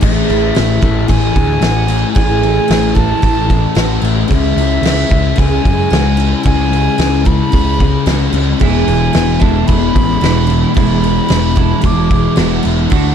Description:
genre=rock, shoegaze and dream pop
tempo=112 BPM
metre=4/4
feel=straight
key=A major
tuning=A4 = 439 Hz
part: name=breathy silver concert flute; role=melody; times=0.0-13.1 s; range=E5 to D6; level=-21 LUFS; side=right 1 dB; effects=tape echo
part: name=picked twelve-string acoustic guitar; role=arpeggios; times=0.0-13.1 s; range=E4 to A4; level=-21 LUFS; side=right 5 dB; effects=analog chorus, tape echo
part: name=thick fuzz guitar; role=riff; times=0.0-13.1 s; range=E2 to D4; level=-17 LUFS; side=left 11 dB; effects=distortion, lush chorus
part: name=fuzz picked electric bass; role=bass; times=0.0-13.1 s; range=E1 to F#2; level=-16 LUFS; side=right 1 dB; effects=overdrive
part: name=loose indie drum kit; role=drums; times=0.0-13.0 s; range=crash cymbal, kick drum, snare drum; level=-15 LUFS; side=right 1 dB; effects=none
part: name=overdriven semi-hollow guitar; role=riff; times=8.6-13.1 s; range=E2 to F#4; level=-18 LUFS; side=right 14 dB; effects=reverse reverb
room=light reverb, studio reverb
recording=dark, warm production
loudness=-10 LUFS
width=side -8 dB against mid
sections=0.0-13.1 A section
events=none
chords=0.0 A5; 4.3 C#m7; 8.6 E7

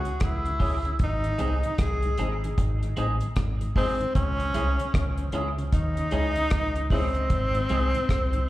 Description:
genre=roots reggae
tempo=76 BPM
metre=4/4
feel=swing 62% on 16ths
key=C# harmonic minor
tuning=A4 = 441 Hz
part: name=warm tenor saxophone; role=melody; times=0.0-8.5 s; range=B#3 to G#4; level=-29 LUFS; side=equal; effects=dub echo
part: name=deep dub fingered electric bass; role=bass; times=0.0-8.5 s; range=G#1 to D#2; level=-27 LUFS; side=equal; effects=none
part: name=mellow tonewheel organ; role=accompaniment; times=0.1-8.4 s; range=G#2 to E4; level=-37 LUFS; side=left 2 dB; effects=slow rotary speaker, slapback echo
part: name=deep reggae drum kit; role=drums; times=0.1-8.5 s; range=hi-hat, kick drum, rim click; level=-27 LUFS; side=equal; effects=none
part: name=clean electric guitar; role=accompaniment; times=0.6-7.9 s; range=G#3 to G#4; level=-35 LUFS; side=right 1 dB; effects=dub echo, slapback echo
room=light reverb, studio ambience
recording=live gig heard through the venue's PA, club reverb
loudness=-23 LUFS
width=side -16 dB against mid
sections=0.0-8.5 A section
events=none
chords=0.0 C#m; 1.0 G#; 4.2 C#m; 7.3 G#

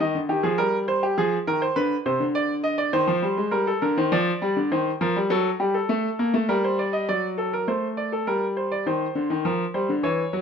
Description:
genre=classical, baroque-style two-part invention for grand piano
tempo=102 BPM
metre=3/4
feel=straight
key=C minor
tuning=A4 = 440 Hz
part: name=clear concert grand piano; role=solo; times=0.0-10.4 s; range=C3 to Eb5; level=-21 LUFS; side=equal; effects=none
room=light reverb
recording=minimal, uncompressed stereo recording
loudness=-21 LUFS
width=side -7 dB against mid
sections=0.0-7.1 A section; 7.1-10.4 B section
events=none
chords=0.0 Cm; 1.2 Fm; 1.8 Cmadd9; 2.9 Cm/Eb; 3.5 Gm; 4.7 Cm/Eb; 5.3 F#m; 6.5 Gm; 7.1 D7/F#; 8.3 Gm; 8.9 Cm

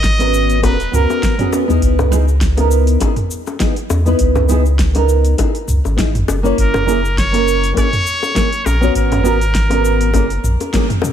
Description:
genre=sunset chillout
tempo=101 BPM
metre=4/4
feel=swing 54% on 16ths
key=C# dorian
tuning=A4 = 440 Hz
part: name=trumpet with straight mute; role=melody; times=0.0-1.5, 6.6-11.0 s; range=A#4 to D#5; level=-20 LUFS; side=equal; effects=digital delay
part: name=warm sub bass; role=bass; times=0.0-10.6 s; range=D#1 to E2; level=-15 LUFS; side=equal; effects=none
part: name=deep house drum kit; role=drums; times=0.0-11.1 s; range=cabasa, hi-hat, snare drum, toms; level=-22 LUFS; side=equal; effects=none
part: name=electronic kick drum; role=drums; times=0.0-10.9 s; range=none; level=-18 LUFS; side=equal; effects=none
part: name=nylon-string guitar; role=accompaniment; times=0.2-10.9 s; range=A#3 to C#5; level=-18 LUFS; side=moving between left 4 dB and right 5 dB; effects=auto-pan, ping-pong delay
part: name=bongos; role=percussion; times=0.2-11.1 s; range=none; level=-24 LUFS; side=left 6 dB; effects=none
room=digital ambience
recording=none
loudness=-12 LUFS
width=side -9 dB against mid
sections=0.0-11.1 A section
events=band accent 10.7; drum fill 10.9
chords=0.0 G#m11; 1.8 C#m7; 6.3 F#9; 8.9 G#m11; 10.1 F#7

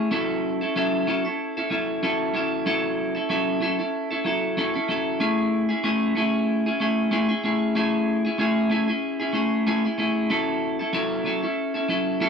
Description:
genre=indie pop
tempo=94 BPM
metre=4/4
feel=swing 55% on 16ths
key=unclear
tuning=A4 = 440 Hz
part: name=clean electric guitar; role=solo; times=0.0-12.3 s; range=F#3 to A4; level=-22 LUFS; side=equal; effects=wide subtle chorus, warbly pitch drift
room=light reverb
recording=none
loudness=-22 LUFS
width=side -6 dB against mid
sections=0.0-12.3 A section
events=none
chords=0.1 F#m7; 5.2 Amaj7; 10.3 F#m7

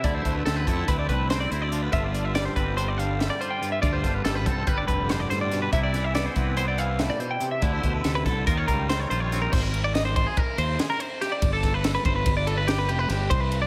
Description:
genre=math rock and midwest emo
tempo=285 BPM (eighths)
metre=9/8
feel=straight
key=unclear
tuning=A4 = 439 Hz
part: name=twangy electric guitar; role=accompaniment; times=0.0-11.4 s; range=G2 to F4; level=-34 LUFS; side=equal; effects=ensemble chorus
part: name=twelve-string electric guitar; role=arpeggios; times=0.0-13.7 s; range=G4 to G5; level=-30 LUFS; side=equal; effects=none
part: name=fuzz fingered electric bass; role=bass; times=0.0-13.7 s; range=F1 to G2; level=-29 LUFS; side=equal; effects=overdrive
part: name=crisp fusion drum kit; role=drums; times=0.0-13.6 s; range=crash cymbal, hi-hat, kick drum, ride cymbal, snare drum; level=-30 LUFS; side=equal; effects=none
room=moderate plate reverb, RT60 2.0 s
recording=dreamy mix soaked in reverb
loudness=-25 LUFS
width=mono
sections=0.0-9.5 A section; 9.5-13.7 B section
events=none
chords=0.0 Dm9; 1.9 G7sus4; 5.7 Cmaj7; 7.6 Dsus2; 8.5 Eb13; 9.5 Abmaj9; 11.4 G

